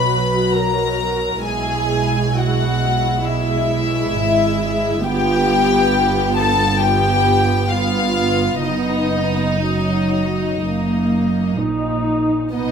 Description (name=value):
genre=classical, slow romantic movement for string orchestra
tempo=61-69 BPM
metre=4/4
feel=rubato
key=unclear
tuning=A4 = 441 Hz
part: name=warm symphonic violin section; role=melody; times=0.0-12.7 s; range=D#5 to B5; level=-21 LUFS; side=left 6 dB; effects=none
part: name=warm chamber violin section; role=second line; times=0.0-12.7 s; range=D#4 to B4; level=-23 LUFS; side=left 2 dB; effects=none
part: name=dark symphonic viola section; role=accompaniment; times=0.0-12.7 s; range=F#3 to F#4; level=-21 LUFS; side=right 2 dB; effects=none
part: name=warm chamber double bass section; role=bass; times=0.0-12.7 s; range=F#1 to B1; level=-23 LUFS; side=right 5 dB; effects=none
part: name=warm symphonic cello section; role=bass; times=0.0-12.7 s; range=F#2 to B2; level=-25 LUFS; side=right 3 dB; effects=none
room=moderate concert hall reverb, RT60 1.9 s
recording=close, detailed microphones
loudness=-15 LUFS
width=side -7 dB against mid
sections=0.0-12.7 A section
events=none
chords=0.0 B5; 1.5 E/B; 5.0 G7; 8.6 B/F#; 10.6 F#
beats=0.53 | 1.45 2.37 3.27 4.16 | 5.04 5.93 6.82 7.71 | 8.65 9.63 10.61 11.59 | 12.55